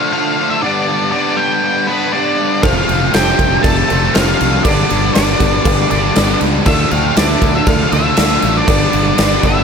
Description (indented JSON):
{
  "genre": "classic rock",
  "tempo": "119 BPM",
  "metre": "4/4",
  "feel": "straight",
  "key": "unclear",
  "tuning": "A4 = 444 Hz",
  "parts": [
    { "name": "octave-fuzz lead guitar", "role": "melody", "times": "0.0-9.6 s", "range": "B4 to A5", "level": "-18 LUFS", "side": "left 2 dB", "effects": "distortion" },
    { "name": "distorted electric guitar", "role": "riff", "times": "0.0-9.6 s", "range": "F2 to D4", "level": "-17 LUFS", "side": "equal", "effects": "overdrive" },
    { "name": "octave-fuzz lead guitar", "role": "second line", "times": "1.9-9.6 s", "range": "B3 to A4", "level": "-24 LUFS", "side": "right 1 dB", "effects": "distortion" },
    { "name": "tack piano", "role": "accompaniment", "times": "2.6-9.6 s", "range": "F3 to F5", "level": "-25 LUFS", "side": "left 7 dB", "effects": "none" },
    { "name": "fuzz fingered electric bass", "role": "bass", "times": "2.6-9.6 s", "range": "F1 to D2", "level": "-18 LUFS", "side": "equal", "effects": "overdrive" },
    { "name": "huge arena drum kit", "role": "drums", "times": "2.6-9.6 s", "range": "crash cymbal, kick drum, snare drum", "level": "-15 LUFS", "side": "equal", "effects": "none" },
    { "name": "cowbell", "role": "percussion", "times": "2.6-9.6 s", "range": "none", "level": "-27 LUFS", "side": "right 9 dB", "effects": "none" }
  ],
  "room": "small room reverb",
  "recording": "none",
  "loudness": "-11 LUFS",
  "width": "side -6 dB against mid",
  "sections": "0.0-9.6 A section",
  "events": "none",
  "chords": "0.0 Dm; 0.6 G; 2.6 Fadd9; 4.7 G; 6.7 Dmadd9; 8.7 G"
}